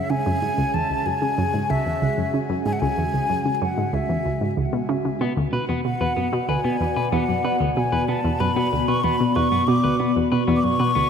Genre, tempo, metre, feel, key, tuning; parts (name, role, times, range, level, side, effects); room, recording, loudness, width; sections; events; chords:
ambient, sequencer-driven space music; 94 BPM; 4/4; straight; B dorian; A4 = 440 Hz
mellow silver concert flute; melody; 0.0-11.1 s; E5 to D6; -25 LUFS; left 2 dB; ping-pong delay
sweeping resonant pad; sustained chords; 0.0-11.1 s; B2 to D5; -25 LUFS; equal; chorus
analog pluck; riff; 0.1-11.0 s; C#2 to C#3; -24 LUFS; right 1 dB; chorus, ping-pong delay
electric guitar at the edge of break-up; arpeggios; 5.2-11.1 s; B3 to B4; -28 LUFS; left 1 dB; auto-pan, ping-pong delay
wet plate reverb, RT60 2.6 s; dreamy mix soaked in reverb; -20 LUFS; side -7 dB against mid
0.0-11.1 A section
filter sweep on synth arpeggio sound 0.0-11.1
0.0 C#m; 5.2 Bm